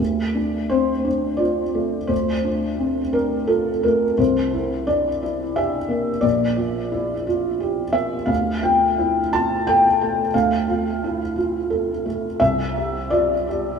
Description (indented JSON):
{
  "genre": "neoclassical minimalist piano",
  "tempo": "87 BPM",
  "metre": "3/4",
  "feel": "rubato",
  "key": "D minor",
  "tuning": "A4 = 442 Hz",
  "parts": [
    { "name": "felt-muted upright piano", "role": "solo", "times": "0.0-13.8 s", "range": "Bb1 to A5", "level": "-18 LUFS", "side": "equal", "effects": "lush chorus, ping-pong delay" }
  ],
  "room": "wet plate reverb, RT60 3.1 s",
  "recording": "dreamy mix soaked in reverb",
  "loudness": "-18 LUFS",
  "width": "side -6 dB against mid",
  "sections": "0.0-13.8 A section",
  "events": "none",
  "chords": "0.0 Dm; 4.2 C7; 6.2 Gm7/Bb; 8.3 Dm; 12.4 C",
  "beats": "0.71 1.41 | 2.11 2.81 3.50 | 4.19 4.87 5.55 | 6.23 6.92 7.61 | 8.29 8.97 9.65 | 10.33 11.00 11.69 | 12.39 13.10"
}